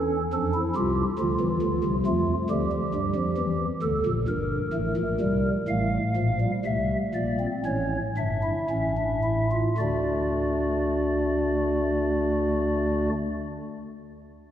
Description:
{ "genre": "classical, baroque-style 3-part fugue for pipe organ", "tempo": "54-70 BPM", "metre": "4/4", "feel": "straight", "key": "D minor", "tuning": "A4 = 440 Hz", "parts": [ { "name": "pipe organ, stopped flute", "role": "solo", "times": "0.0-13.1 s", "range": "G1 to F5", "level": "-23 LUFS", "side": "equal", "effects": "none" } ], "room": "wet church reverb, RT60 3.0 s", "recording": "none", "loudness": "-23 LUFS", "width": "side -10 dB against mid", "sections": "0.0-9.8 A section; 9.8-14.2 B section", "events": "slowing down 0.3-9.8", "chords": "0.3 Dm; 3.8 Gm; 5.7 Dm/A; 7.7 A7; 9.8 D" }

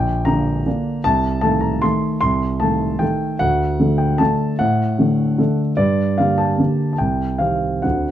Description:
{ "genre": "classical, piano waltz", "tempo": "151 BPM", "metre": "3/4", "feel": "uneven beats, rubato", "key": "G minor", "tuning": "A4 = 440 Hz", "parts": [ { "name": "warm grand piano", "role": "solo", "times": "0.0-8.1 s", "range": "Bb1 to C6", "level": "-16 LUFS", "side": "equal", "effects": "none" } ], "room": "light reverb", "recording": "dark, warm production", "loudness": "-16 LUFS", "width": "side -11 dB against mid", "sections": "0.0-8.1 A section", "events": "none", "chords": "0.0 Gm/Bb; 1.1 Adim/C; 3.4 D; 5.8 Gm; 7.0 Cm" }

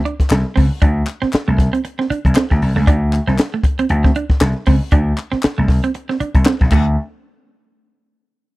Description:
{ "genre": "funk", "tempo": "117 BPM", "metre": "4/4", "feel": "swing 56% on 16ths", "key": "unclear", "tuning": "A4 = 439 Hz", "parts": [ { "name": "clean electric guitar", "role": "riff", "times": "0.1-6.9 s", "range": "A3 to D4", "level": "-21 LUFS", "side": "right 5 dB", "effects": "none" }, { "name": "compact cocktail drum kit", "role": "drums", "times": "0.1-6.8 s", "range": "crash cymbal, hi-hat, kick drum, snare drum", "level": "-16 LUFS", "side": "equal", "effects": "none" }, { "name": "vintage slap bass", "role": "bass", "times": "0.3-7.0 s", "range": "B1 to D2", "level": "-16 LUFS", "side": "equal", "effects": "none" }, { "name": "group handclap", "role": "percussion", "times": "0.3-7.0 s", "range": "none", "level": "-27 LUFS", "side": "left 4 dB", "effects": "none" } ], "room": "little or no reverb", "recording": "dry, close 1970s-style studio recording", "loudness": "-14 LUFS", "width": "side -20 dB against mid", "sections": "0.0-7.0 A section; 7.0-8.6 B section", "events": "none", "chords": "0.0 N.C.; 6.7 D5; 7.0 N.C." }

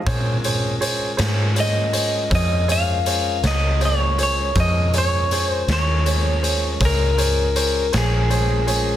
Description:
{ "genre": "slow blues", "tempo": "53 BPM (dotted quarters)", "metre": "12/8", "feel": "straight", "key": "unclear", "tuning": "A4 = 440 Hz", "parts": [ { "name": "clear upright piano", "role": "accompaniment", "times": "0.0-9.0 s", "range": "Ab4 to Db5", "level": "-27 LUFS", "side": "right 3 dB", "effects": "none" }, { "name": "mellow tonewheel organ", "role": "sustained chords", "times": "0.0-9.0 s", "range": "Ab3 to Bb4", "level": "-32 LUFS", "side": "left 2 dB", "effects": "slow rotary speaker" }, { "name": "vintage muted fingered electric bass", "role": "bass", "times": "0.1-9.0 s", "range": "Bb1 to Bb2", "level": "-21 LUFS", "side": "equal", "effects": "none" }, { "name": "raw garage drum kit", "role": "drums", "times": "0.1-8.9 s", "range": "hi-hat, kick drum, snare drum", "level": "-24 LUFS", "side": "left 1 dB", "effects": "none" }, { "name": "electric guitar through a small old amp", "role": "melody", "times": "1.6-9.0 s", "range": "Ab4 to F5", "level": "-22 LUFS", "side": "left 1 dB", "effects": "slapback echo" } ], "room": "light reverb, small room ambience", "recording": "dense, heavily limited modern master", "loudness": "-17 LUFS", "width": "side -11 dB against mid", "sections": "0.0-9.0 A section", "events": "none", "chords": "0.1 Bbm7" }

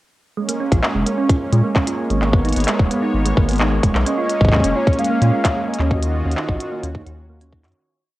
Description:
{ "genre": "IDM", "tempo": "130 BPM", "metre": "4/4", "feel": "straight", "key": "Bb phrygian", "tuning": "A4 = 437 Hz", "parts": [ { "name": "warm analog pad", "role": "sustained chords", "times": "0.4-7.7 s", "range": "Eb3 to Gb4", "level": "-23 LUFS", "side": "left 1 dB", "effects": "chorus, tremolo, sidechain pumping, cassette tape" }, { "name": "thumb-piano-like synth pluck", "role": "arpeggios", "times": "0.4-7.7 s", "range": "Ab3 to Gb4", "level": "-24 LUFS", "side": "right 5 dB", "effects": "chorus, cassette tape, analog delay" }, { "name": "bubbling stepped-filter texture", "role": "texture", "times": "0.4-7.8 s", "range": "Db5", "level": "-32 LUFS", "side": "equal", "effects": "chorus, built-in reverb, cassette tape" }, { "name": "glitchy drum kit", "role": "drums", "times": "0.5-7.8 s", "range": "handclaps, hi-hat", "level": "-24 LUFS", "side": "equal", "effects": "none" }, { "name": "round analog bass", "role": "bass", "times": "0.7-7.7 s", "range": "Eb1 to Bb2", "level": "-19 LUFS", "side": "equal", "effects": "none" }, { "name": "electronic kick drum", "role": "drums", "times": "0.7-7.6 s", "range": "none", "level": "-18 LUFS", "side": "equal", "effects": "none" }, { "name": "warm velvety synth lead", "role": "melody", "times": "4.1-7.5 s", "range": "Db5 to F5", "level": "-24 LUFS", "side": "equal", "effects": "chorus, vintage 12-bit sampler grit, cassette tape" } ], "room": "moderate small room reverb, RT60 0.5 s", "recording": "home recording on cassette", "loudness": "-16 LUFS", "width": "side -17 dB against mid", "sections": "0.4-7.8 groove", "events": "fade-out 5.3-7.8", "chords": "0.4 Bbm7; 2.2 Abmadd9; 4.1 Bbm7; 5.9 Ebm7" }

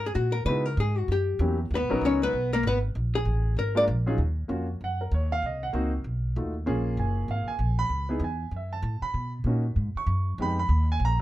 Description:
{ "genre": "jazz, small-group swing and bop", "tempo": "194 BPM", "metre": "4/4", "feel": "swing 61% on 8ths", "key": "Eb minor", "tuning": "A4 = 440 Hz", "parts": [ { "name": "archtop guitar, miked and amplified", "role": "melody", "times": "0.0-3.8 s", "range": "A#3 to D5", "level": "-26 LUFS", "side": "left 2 dB", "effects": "none" }, { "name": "upright bass", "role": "bass", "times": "0.0-11.2 s", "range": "Gb1 to Db3", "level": "-27 LUFS", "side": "equal", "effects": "none" }, { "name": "warm grand piano", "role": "accompaniment", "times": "0.5-11.2 s", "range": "Gb3 to C#6", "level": "-30 LUFS", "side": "right 1 dB", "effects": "none" } ], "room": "light reverb", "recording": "none", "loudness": "-24 LUFS", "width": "side -15 dB against mid", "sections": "0.0-4.2 A section; 4.2-11.2 A section", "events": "hollow-body jazz guitar solo 0.0-4.2", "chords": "0.5 Dbm11; 1.1 Gb7b9; 1.7 Bmaj7; 2.9 Bb7(no3); 4.2 Ebm9; 5.4 Cm7b5; 6.0 B7#11; 6.7 Bbm7; 7.9 Dbm7; 8.5 Gbmadd11; 9.1 Bmaj9; 10.4 Fm7b5" }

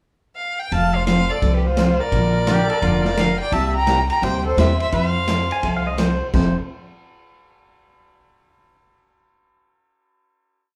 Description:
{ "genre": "country, western swing", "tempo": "171 BPM", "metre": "4/4", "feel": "swing 64% on 8ths", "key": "F major", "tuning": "A4 = 440 Hz", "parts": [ { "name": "rich fiddle", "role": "melody", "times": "0.4-6.0 s", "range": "B4 to Bb5", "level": "-25 LUFS", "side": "equal", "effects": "none" }, { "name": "clear erhu", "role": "second line", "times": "0.7-6.0 s", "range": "F4 to G5", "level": "-27 LUFS", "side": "equal", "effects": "none" }, { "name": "picked steel-string acoustic guitar", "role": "accompaniment", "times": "0.7-6.5 s", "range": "C3 to A4", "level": "-25 LUFS", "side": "equal", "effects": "none" }, { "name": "upright bass", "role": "bass", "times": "0.7-6.5 s", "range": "F1 to F2", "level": "-25 LUFS", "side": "equal", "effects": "none" }, { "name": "swinging big-band drum kit", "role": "drums", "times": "0.7-6.4 s", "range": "crash cymbal, hi-hat, kick drum, ride cymbal, snare drum", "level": "-28 LUFS", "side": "equal", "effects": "none" }, { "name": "pedal steel guitar", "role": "second line", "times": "2.5-3.1, 5.5-6.6 s", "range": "F4 to Ab5", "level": "-28 LUFS", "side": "equal", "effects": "none" } ], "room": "moderate large studio reverb, RT60 0.8 s", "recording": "band playing live in one room", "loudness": "-19 LUFS", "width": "mono", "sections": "0.0-0.7 pickup bar; 0.7-6.3 A section; 6.3-7.8 final chord", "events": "none", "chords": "0.0 N.C.; 0.7 F; 2.1 Bbmaj7; 3.5 C7; 4.9 Fmaj7" }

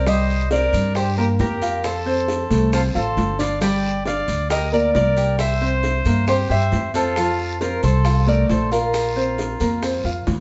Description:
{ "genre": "latin, Cuban son and guajira", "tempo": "135 BPM", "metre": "4/4", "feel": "straight", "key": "unclear", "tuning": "A4 = 440 Hz", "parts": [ { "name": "Cuban tres", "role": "melody", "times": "0.0-10.2 s", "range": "A4 to G5", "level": "-26 LUFS", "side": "equal", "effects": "none" }, { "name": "clear trumpet", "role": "second line", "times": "0.0-10.2 s", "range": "F4 to D5", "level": "-30 LUFS", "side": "equal", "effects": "none" }, { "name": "clear concert grand piano", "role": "arpeggios", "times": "0.0-10.4 s", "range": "F3 to G5", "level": "-26 LUFS", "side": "equal", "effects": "none" }, { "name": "upright bass", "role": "bass", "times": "0.0-10.4 s", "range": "G1 to G2", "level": "-24 LUFS", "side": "equal", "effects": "none" }, { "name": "bongos", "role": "percussion", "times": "0.1-10.4 s", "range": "none", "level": "-32 LUFS", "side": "equal", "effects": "none" }, { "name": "guiro", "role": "percussion", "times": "0.1-10.4 s", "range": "none", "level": "-41 LUFS", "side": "equal", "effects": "none" }, { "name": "maracas", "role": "percussion", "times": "0.1-10.4 s", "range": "none", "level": "-41 LUFS", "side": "equal", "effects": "none" } ], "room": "moderate studio reverb, RT60 0.9 s", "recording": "heard from further back in the room, nothing above 7.9 kHz", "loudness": "-20 LUFS", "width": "mono", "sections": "0.0-10.4 A section", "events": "none", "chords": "0.1 Cm7; 1.8 F; 3.6 Gm; 5.4 C7; 7.2 F; 8.9 Bbsus2" }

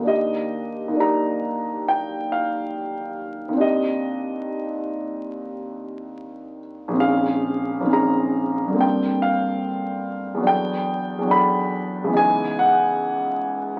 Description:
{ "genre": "classical, impressionist solo piano", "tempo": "70 BPM", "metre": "4/4", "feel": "rubato", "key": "unclear", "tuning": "A4 = 440 Hz", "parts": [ { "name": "warm concert grand piano", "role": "solo", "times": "0.0-13.8 s", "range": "Bb1 to B5", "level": "-23 LUFS", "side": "equal", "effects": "none" } ], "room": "moderate studio ambience, RT60 0.5 s", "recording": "very old 78 rpm record, vinyl crackle", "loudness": "-22 LUFS", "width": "mono", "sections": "0.0-13.8 A section", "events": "none", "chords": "0.1 Ebmaj7; 3.6 Cmadd9/Eb; 7.0 Bbm11; 8.8 Gm11; 10.5 Em11; 12.2 Dbm11" }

